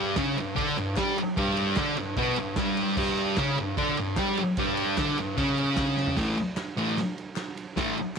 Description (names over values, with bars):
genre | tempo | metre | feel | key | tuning
garage rock duo or trio | 150 BPM | 4/4 | straight | unclear | A4 = 440 Hz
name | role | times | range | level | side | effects
thick fuzz guitar | riff | 0.0-7.9 s | G2 to G4 | -25 LUFS | equal | distortion
raw garage drum kit | drums | 0.2-8.1 s | crash cymbal, kick drum, ride cymbal, snare drum, toms | -32 LUFS | right 2 dB | none
group handclap | percussion | 0.2-8.2 s | none | -41 LUFS | left 14 dB | none
room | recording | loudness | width
light reverb | 1960s-style stereo | -24 LUFS | side -6 dB against mid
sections
0.0-6.2 A section; 6.2-8.2 B section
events
drum fill 6.0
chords
0.0 G5; 6.2 A5